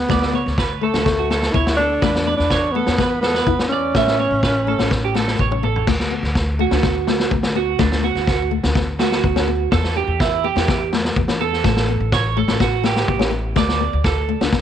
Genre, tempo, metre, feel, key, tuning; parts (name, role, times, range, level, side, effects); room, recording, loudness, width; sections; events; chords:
highlife guitar band; 125 BPM; 4/4; straight; D major; A4 = 439 Hz
breathy tenor saxophone; melody; 0.0-5.3 s; A3 to E4; -20 LUFS; equal
nylon-string guitar; accompaniment; 0.0-14.6 s; A3 to E4; -24 LUFS; left 12 dB
upright bass; bass; 0.0-14.6 s; A1 to E2; -23 LUFS; equal
electric guitar through a small old amp; arpeggios; 0.1-14.6 s; D4 to E5; -23 LUFS; right 12 dB; wide subtle chorus, tape echo
vintage drum kit; drums; 0.1-14.6 s; crash cymbal, kick drum, snare drum, toms; -20 LUFS; equal
small room reverb; 1960s-style stereo with parts hard left and right, nothing above 10.5 kHz; -16 LUFS; side -9 dB against mid
0.0-5.9 A section; 5.9-14.6 B section
drum fill 5.4-5.9; clean electric guitar solo 5.9-14.6
0.0 Dmaj7(no3); 2.0 E5; 3.9 A; 5.9 D; 9.7 Em; 11.6 A7; 13.6 D5